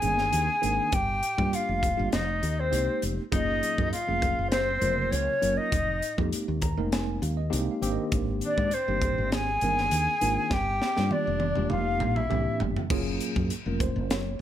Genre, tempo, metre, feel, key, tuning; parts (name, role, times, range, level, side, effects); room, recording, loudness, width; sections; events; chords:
electric jazz fusion; 100 BPM; 4/4; swing 53% on 16ths; A4 = 440 Hz
silver concert flute; melody; 0.0-12.6 s; C5 to Ab5; -27 LUFS; equal
clear tenor saxophone; second line; 0.0-12.6 s; C4 to Ab4; -35 LUFS; left 4 dB
bright tine electric piano; accompaniment; 0.0-14.4 s; Db3 to Bb5; -32 LUFS; right 1 dB; medium stereo tremolo
woody fretless electric bass; bass; 0.0-14.4 s; E1 to Ab2; -30 LUFS; equal; lush chorus
crisp fusion drum kit; drums; 0.0-14.3 s; crash cymbal, hi-hat, kick drum, snare drum, toms; -31 LUFS; equal
light reverb, small room reverb; -24 LUFS; side -11 dB against mid
0.0-12.9 A section; 12.9-14.4 B section
tine electric piano fill 6.3-8.1; drum fill 10.5-12.9
0.0 Abmaj9#11; 0.9 Gm7; 2.1 Fm11; 3.3 Gbmaj7; 5.7 Fm11; 7.8 Abmaj9#11; 10.5 Gm7; 11.7 Fm11; 12.3 C7; 12.9 Gbmaj7